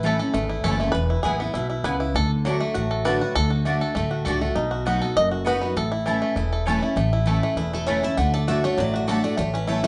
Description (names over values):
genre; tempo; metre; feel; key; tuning
bluegrass; 199 BPM; 4/4; swing 54% on 8ths; A major; A4 = 438 Hz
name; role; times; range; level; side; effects
bluegrass banjo; melody; 0.0-9.9 s; E3 to D#5; -29 LUFS; equal; none
picked steel-string acoustic guitar; accompaniment; 0.0-9.9 s; E2 to F#4; -28 LUFS; equal; none
mandolin; stabs; 0.0-9.8 s; A3 to B5; -32 LUFS; equal; none
upright bass; bass; 0.0-9.8 s; E1 to D2; -28 LUFS; equal; none
picked steel-string acoustic guitar; melody; 7.7-9.9 s; F#4 to F#5; -29 LUFS; equal; none
room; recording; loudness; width
wet large studio reverb, RT60 0.8 s; band playing live in one room, nothing above 10.9 kHz; -23 LUFS; mono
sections
0.0-7.0 A section; 7.0-9.9 B section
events
five-string banjo solo 0.0-7.0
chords
0.0 A; 0.9 E; 2.1 D; 4.6 B; 5.8 A; 8.2 D